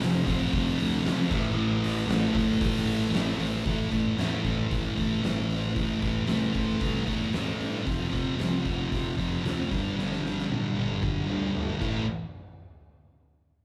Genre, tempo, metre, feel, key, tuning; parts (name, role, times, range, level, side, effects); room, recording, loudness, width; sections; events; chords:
garage rock duo or trio; 114 BPM; 4/4; straight; A minor; A4 = 440 Hz
thick fuzz guitar; riff; 0.0-12.0 s; F2 to A3; -30 LUFS; equal; distortion
fuzz fingered electric bass; bass; 0.0-12.1 s; E1 to G2; -37 LUFS; equal; overdrive
oversized low-tuned drum kit; drums; 0.0-11.9 s; crash cymbal, hi-hat, kick drum, snare drum, toms; -34 LUFS; equal
light reverb; band playing live in one room; -28 LUFS; mono
0.0-3.7 A section; 3.7-12.1 B section; 12.1-13.6 C section
drum fill 10.0-12.1
0.0 F; 1.3 A5; 7.9 F5; 9.7 G; 11.8 A5; 12.1 N.C.